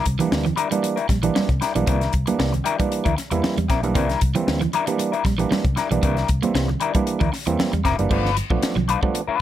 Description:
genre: funk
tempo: 116 BPM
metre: 4/4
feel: straight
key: unclear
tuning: A4 = 444 Hz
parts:
  - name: clean electric guitar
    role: accompaniment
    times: 0.0-9.4 s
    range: G3 to B4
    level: -24 LUFS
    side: left 7 dB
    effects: wah
  - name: electric guitar at the edge of break-up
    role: riff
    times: 0.1-9.2 s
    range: E3 to C4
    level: -26 LUFS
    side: right 6 dB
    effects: none
  - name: vintage muted fingered electric bass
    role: bass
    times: 0.1-9.3 s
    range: F1 to E2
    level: -24 LUFS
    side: left 1 dB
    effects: none
  - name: crisp fusion drum kit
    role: drums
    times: 0.1-9.3 s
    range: crash cymbal, hi-hat, kick drum, snare drum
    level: -24 LUFS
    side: left 1 dB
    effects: none
  - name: congas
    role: percussion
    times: 0.1-8.9 s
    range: none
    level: -32 LUFS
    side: right 5 dB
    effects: none
  - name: mellow clav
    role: stabs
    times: 0.2-9.2 s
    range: E3 to E4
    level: -24 LUFS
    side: right 4 dB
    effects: none
room: light reverb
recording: none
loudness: -19 LUFS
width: side -12 dB against mid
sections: 0.0-8.1 A section; 8.1-9.4 B section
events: none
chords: 0.0 C9; 8.1 G9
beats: 0.32 0.84 1.36 | 1.88 2.40 2.92 3.44 | 3.95 4.47 4.99 5.51 | 6.03 6.55 7.07 7.59 | 8.11 8.63 9.15

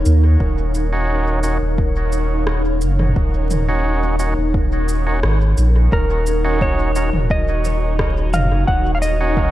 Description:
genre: ambient dub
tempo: 87 BPM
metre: 4/4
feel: straight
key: Eb minor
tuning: A4 = 439 Hz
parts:
  - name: granular cloud pad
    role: sustained chords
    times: 0.0-9.5 s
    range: Eb4 to Gb5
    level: -24 LUFS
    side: equal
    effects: built-in reverb
  - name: warm sub bass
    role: bass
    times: 0.0-9.5 s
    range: Eb1 to Eb2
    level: -17 LUFS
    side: equal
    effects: none
  - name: organic electronic drum kit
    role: drums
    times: 0.1-9.2 s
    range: rim click, shaker, toms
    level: -26 LUFS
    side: equal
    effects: dub echo
  - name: electronic kick drum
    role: drums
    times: 0.4-9.5 s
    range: none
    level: -21 LUFS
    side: equal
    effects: overdrive
  - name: overdriven tonewheel organ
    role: stabs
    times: 0.9-9.5 s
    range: Db4 to Gb4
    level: -25 LUFS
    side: right 2 dB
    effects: dub echo
  - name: clean lap steel guitar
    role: melody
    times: 5.9-9.5 s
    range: Bb4 to Gb5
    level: -22 LUFS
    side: equal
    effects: dub echo
room: light reverb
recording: vinyl crackle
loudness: -15 LUFS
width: side -14 dB against mid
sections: 0.0-5.9 A section; 5.9-9.5 B section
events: band accent 5.2-5.6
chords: 0.0 Ebm7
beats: | 0.41 1.09 1.78 2.47 | 3.16 3.85 4.54 5.23 | 5.92 6.61 7.30 7.99 | 8.68 9.37

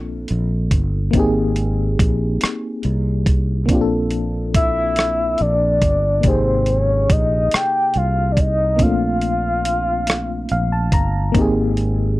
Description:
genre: slow six-eight R&B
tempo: 47 BPM (dotted quarters)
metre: 6/8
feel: straight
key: Ab major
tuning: A4 = 440 Hz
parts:
  - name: FM electric piano with auto-pan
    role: accompaniment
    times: 0.0-12.2 s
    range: C3 to Bb5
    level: -22 LUFS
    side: left 1 dB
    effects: none
  - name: fretless electric bass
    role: bass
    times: 0.0-12.2 s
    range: G1 to C2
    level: -20 LUFS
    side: equal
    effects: none
  - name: dusty soul sampler-style drum kit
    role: drums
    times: 0.3-12.0 s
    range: hi-hat, kick drum, rim click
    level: -18 LUFS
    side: equal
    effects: none
  - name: soft octave-layered synth lead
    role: melody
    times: 4.6-10.9 s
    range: C5 to G5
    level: -19 LUFS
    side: left 1 dB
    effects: chorus, tremolo, slapback echo
room: little or no reverb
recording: dry, close 1970s-style studio recording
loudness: -16 LUFS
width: side -18 dB against mid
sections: 0.0-12.2 A section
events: FM electric piano fill 10.1-11.3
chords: 0.0 Bbmaj9; 1.1 Abmaj9; 3.7 Bbmaj9; 6.2 Abmaj9; 8.8 Bbmaj9; 11.3 Abmaj9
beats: | 1.14 2.41 | 3.69 4.97 | 6.24 7.52 | 8.80 10.07 | 11.35

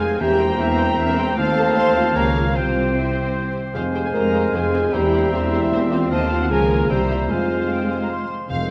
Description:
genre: cinematic, playful, whimsical film cue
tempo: 152 BPM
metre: 3/4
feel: straight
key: F minor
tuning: A4 = 439 Hz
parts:
  - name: muted studio violin section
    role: melody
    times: 0.0-8.7 s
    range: Bb4 to Ab5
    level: -33 LUFS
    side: equal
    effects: none
  - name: muted studio violin section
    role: second line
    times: 0.0-8.1 s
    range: Eb5 to C6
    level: -35 LUFS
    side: equal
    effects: none
  - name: silver concert flute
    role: second line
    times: 0.0-8.5 s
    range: G5 to C6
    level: -30 LUFS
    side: equal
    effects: none
  - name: warm clarinet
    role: second line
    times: 0.0-8.7 s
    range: C4 to Db5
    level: -33 LUFS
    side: equal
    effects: none
  - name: warm oboe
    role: second line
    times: 0.0-8.7 s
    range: C5 to G5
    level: -32 LUFS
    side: equal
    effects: none
  - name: mellow bassoon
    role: accompaniment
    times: 0.0-8.7 s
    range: F3 to C4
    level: -31 LUFS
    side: equal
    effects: none
  - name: muted studio viola section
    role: accompaniment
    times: 0.0-8.3 s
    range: Ab3 to C5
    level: -34 LUFS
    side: equal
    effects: none
  - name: dark French horn section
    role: sustained chords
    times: 0.0-8.7 s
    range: Eb4 to C5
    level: -26 LUFS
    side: equal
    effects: none
  - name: concert harp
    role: arpeggios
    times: 0.0-8.7 s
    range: C3 to C6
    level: -31 LUFS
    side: equal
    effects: none
  - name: mellow tuba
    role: bass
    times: 0.0-8.7 s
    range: E1 to Eb2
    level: -29 LUFS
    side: equal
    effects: none
  - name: muted studio cello section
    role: bass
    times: 0.0-8.7 s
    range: F2 to E4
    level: -30 LUFS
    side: equal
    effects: none
  - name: muted studio double bass section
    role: bass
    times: 0.0-8.7 s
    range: F1 to F2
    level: -28 LUFS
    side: equal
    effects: none
room: moderate concert hall reverb, RT60 1.7 s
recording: vinyl crackle, nothing above 10.5 kHz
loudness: -19 LUFS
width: mono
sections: 0.0-8.5 A section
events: none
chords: 0.2 C7/E; 1.4 F7/Eb; 2.2 Bbm/Db; 2.6 C; 3.7 Fm; 4.9 C7/E; 6.1 F7/Eb; 6.5 Bbm/Db; 6.9 C7; 7.3 Fm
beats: | 0.20 0.59 0.99 | 1.38 1.77 2.16 | 2.56 2.95 3.35 | 3.75 4.14 4.54 | 4.93 5.33 5.72 | 6.11 6.50 6.90 | 7.29 7.70 8.09 | 8.49

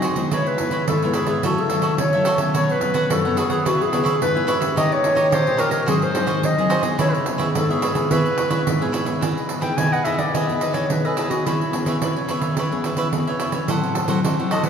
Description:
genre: samba and choro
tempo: 108 BPM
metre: 4/4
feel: straight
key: C# minor, E major from 9.2 s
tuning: A4 = 442 Hz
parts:
  - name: warm clarinet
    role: second line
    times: 0.0-14.7 s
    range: E4 to G#5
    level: -22 LUFS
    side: left 1 dB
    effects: none
  - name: cavaquinho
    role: accompaniment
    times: 0.0-14.7 s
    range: D#4 to F#5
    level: -25 LUFS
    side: right 2 dB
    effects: none
  - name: nylon-string guitar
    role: accompaniment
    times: 0.0-14.7 s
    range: F#2 to G#4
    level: -26 LUFS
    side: left 2 dB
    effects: none
  - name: pandeiro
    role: percussion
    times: 0.0-14.7 s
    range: none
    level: -23 LUFS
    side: right 3 dB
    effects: none
room: wet church reverb, RT60 3.6 s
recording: recorded in a church or concert hall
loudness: -18 LUFS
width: side -7 dB against mid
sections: 0.0-9.2 A section; 9.2-14.7 B section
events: clarinet solo 0.0-9.2, 9.2-14.7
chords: 0.3 C#m7; 1.4 F#m7/C#; 2.5 Bsus2; 3.7 C#m7; 4.8 D#7; 5.9 G#7; 7.0 C#m7; 9.2 Emaj7; 11.5 C#m7/E; 13.7 Am6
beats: | 0.32 0.88 1.44 1.99 | 2.55 3.11 3.66 4.22 | 4.78 5.33 5.89 6.45 | 7.00 7.56 8.12 8.67 | 9.23 9.79 10.35 10.90 | 11.46 12.02 12.57 13.13 | 13.69 14.25

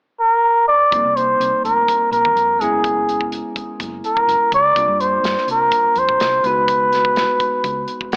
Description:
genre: electric jazz fusion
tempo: 125 BPM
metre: 4/4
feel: straight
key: unclear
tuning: A4 = 442 Hz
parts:
  - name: trumpet with cup mute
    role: melody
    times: 0.2-8.1 s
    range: Ab4 to D5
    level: -17 LUFS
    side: equal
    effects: none
  - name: bell-like tine electric piano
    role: accompaniment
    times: 0.9-8.2 s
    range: G3 to Gb5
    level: -30 LUFS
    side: equal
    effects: lush chorus
  - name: hollow-body short-scale fingered electric bass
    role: bass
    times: 0.9-8.2 s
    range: F1 to G2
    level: -35 LUFS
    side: equal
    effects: none
  - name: modern studio drum kit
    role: drums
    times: 0.9-8.2 s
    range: hi-hat, kick drum, snare drum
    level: -29 LUFS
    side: equal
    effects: none
room: moderate echo chamber reverb, RT60 2.1 s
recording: AM radio sound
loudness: -17 LUFS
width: mono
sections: 0.9-8.2 A section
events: tine electric piano fill 7.9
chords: 0.0 N.C.; 0.9 F9sus4; 2.6 Gb9sus4; 4.8 C9sus4; 6.4 Db9sus4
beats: 0.45 | 0.93 1.41 1.89 2.36 | 2.84 3.32 3.80 4.28 | 4.76 5.24 5.72 6.20 | 6.68 7.17 7.64 8.13

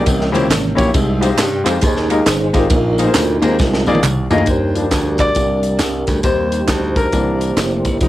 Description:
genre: uptempo gospel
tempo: 136 BPM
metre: 4/4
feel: swing 63% on 8ths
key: Eb major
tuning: A4 = 440 Hz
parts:
  - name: warm baby grand piano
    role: accompaniment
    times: 0.0-8.1 s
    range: Bb2 to Eb5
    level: -18 LUFS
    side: left 3 dB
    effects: cassette tape
  - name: percussive tonewheel organ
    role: sustained chords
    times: 0.0-8.1 s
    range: E3 to G5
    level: -20 LUFS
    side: right 2 dB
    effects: slow rotary speaker, chorus vibrato, cassette tape
  - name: glassy slap bass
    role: bass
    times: 0.0-8.1 s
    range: F1 to G2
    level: -19 LUFS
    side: equal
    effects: none
  - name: crisp fusion drum kit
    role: drums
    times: 0.1-8.1 s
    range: hi-hat, kick drum, ride cymbal, snare drum, toms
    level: -19 LUFS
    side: equal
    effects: cassette tape
  - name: tambourine and handclaps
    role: percussion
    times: 0.1-8.1 s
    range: none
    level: -26 LUFS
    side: right 3 dB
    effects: none
room: light reverb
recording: home recording on cassette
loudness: -13 LUFS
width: side -15 dB against mid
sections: 0.0-4.5 A section; 4.5-8.1 B section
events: tonewheel organ solo 0.0-4.5; drum fill 3.6-4.5; grand piano solo 4.5-8.1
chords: 0.1 C7b9; 0.9 Fm9/C; 2.7 Bb9sus4; 4.5 Ebmaj7; 6.2 Cm9; 7.1 C7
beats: 0.06 0.50 | 0.94 1.39 1.83 2.27 | 2.71 3.15 3.59 4.03 | 4.48 4.92 5.36 5.80 | 6.25 6.69 7.13 7.58 | 8.02

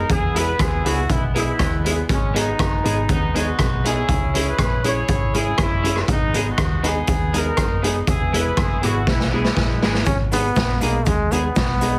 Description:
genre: ska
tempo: 120 BPM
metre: 4/4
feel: straight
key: G# minor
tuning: A4 = 439 Hz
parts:
  - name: clear horn section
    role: melody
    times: 0.0-10.0 s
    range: G#3 to C#5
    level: -27 LUFS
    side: equal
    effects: slapback echo
  - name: hollow-body short-scale fingered electric bass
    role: bass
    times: 0.0-12.0 s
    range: E1 to E2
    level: -26 LUFS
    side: equal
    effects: none
  - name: raw garage drum kit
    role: drums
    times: 0.1-11.9 s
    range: hi-hat, kick drum, rim click, snare drum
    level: -24 LUFS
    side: equal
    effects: none
  - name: clean electric guitar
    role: accompaniment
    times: 0.3-11.9 s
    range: G#3 to G#4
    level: -31 LUFS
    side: equal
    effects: lush chorus
  - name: dark upright piano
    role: stabs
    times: 0.3-11.9 s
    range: B3 to G#4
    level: -29 LUFS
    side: equal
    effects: none
  - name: bright trombone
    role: melody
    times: 10.1-12.0 s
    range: G#3 to C#4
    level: -25 LUFS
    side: equal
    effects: slapback echo
  - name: cabasa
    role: percussion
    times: 10.1-11.9 s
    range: none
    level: -41 LUFS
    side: equal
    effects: none
room: light reverb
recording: heavily compressed radio sound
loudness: -20 LUFS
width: mono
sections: 0.0-10.1 A section; 10.1-12.0 B section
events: drum fill 9.1-10.1; trombone solo 10.1-12.0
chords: 0.1 E; 2.1 G#m; 4.1 C#m; 6.1 G#m; 8.1 E; 10.1 G#m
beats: | 0.10 0.60 1.10 1.59 | 2.09 2.59 3.09 3.59 | 4.09 4.59 5.08 5.58 | 6.08 6.58 7.08 7.58 | 8.08 8.57 9.07 9.57 | 10.07 10.56 11.06 11.56

